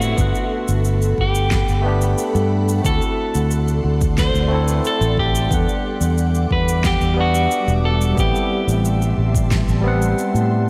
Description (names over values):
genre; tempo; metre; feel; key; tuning
sunset chillout; 90 BPM; 4/4; straight; G major; A4 = 440 Hz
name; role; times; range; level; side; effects
clean electric guitar; melody; 0.0-10.1 s; F#4 to C5; -27 LUFS; equal; vintage 12-bit sampler grit, diffuse ambient delay
barky tine electric piano; accompaniment; 0.0-10.7 s; G3 to F#5; -26 LUFS; equal; overdrive, diffuse ambient delay
ethereal airy pad; sustained chords; 0.0-10.7 s; G3 to D6; -29 LUFS; equal; ensemble chorus, built-in reverb
fingered electric bass; bass; 0.0-10.7 s; E1 to A2; -21 LUFS; equal; none
electronic cabasa and snare drum; drums; 0.0-10.5 s; none; -32 LUFS; equal; none
electronic kick drum; drums; 0.2-9.6 s; none; -24 LUFS; equal; none
room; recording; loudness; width
moderate lush hall reverb, RT60 2.6 s; dreamy mix soaked in reverb; -18 LUFS; mono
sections
0.0-10.7 A section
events
kick drops out 10.2-10.7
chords
0.2 Gmaj9; 2.8 D7; 5.5 Em9; 8.2 Am7